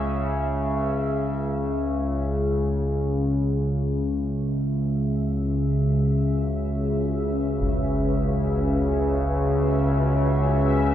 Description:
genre	dark ambient drone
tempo	free time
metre	none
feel	none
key	C# minor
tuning	A4 = 440 Hz
part	analog drone	drone	0.0-10.9 s	C#2 to C#3	-22 LUFS	left 1 dB	chorus
part	bubbling stepped-filter texture	texture	0.0-1.5, 9.6-10.9 s	E5	-32 LUFS	right 1 dB	chorus, built-in reverb
part	deep dark ambient pad	sustained chords	4.3-10.9 s	C#4 to E5	-31 LUFS	right 2 dB	chorus, built-in reverb
part	concert bass drum	percussion	7.6-7.8 s	none	-32 LUFS	equal	low-pass filter on kick
room	moderate spring reverb, RT60 2.5 s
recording	none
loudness	-21 LUFS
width	side -11 dB against mid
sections	0.0-1.5 A section; 1.5-10.9 B section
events	fade-in on ambient pad 1.5-10.9; fade-in on drum 1.5-10.9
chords	0.0 C#m

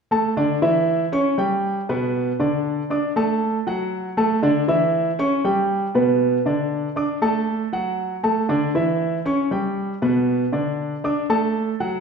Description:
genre	latin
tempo	118 BPM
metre	4/4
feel	straight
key	D major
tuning	A4 = 441 Hz
part	warm grand piano	solo	0.1-12.0 s	B2 to D6	-19 LUFS	right 1 dB	none
room	wet large studio reverb, RT60 1.3 s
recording	band playing live in one room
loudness	-19 LUFS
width	side -5 dB against mid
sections	0.0-12.0 A section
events	none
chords	0.0 D5; 0.9 Em6; 1.9 Bm; 2.9 D; 4.9 Em6; 6.0 Bm; 7.0 D; 9.0 Em6; 10.0 Bm; 11.0 D

